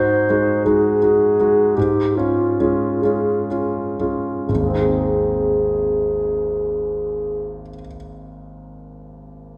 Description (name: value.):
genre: classical, romantic duo for clarinet and grand piano.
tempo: 39-55 BPM (dotted quarters).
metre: 6/8.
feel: rubato.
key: Ab major.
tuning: A4 = 440 Hz.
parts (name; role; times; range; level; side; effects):
dark clarinet; melody; 0.0-7.6 s; F4 to C5; -21 LUFS; equal; none.
clear concert grand piano; accompaniment; 0.0-9.6 s; Ab1 to Ab4; -23 LUFS; equal; none.
room: moderate concert hall reverb, RT60 1.9 s.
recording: none.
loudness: -19 LUFS.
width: mono.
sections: 0.0-4.5 A section; 4.5-9.6 B section.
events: slowing down 0.0-4.5.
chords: 0.0 Ab7; 1.8 Db/Ab; 4.5 Ab.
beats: 0.65 | 1.76 3.03 | 4.49 5.90 | 7.32 8.75.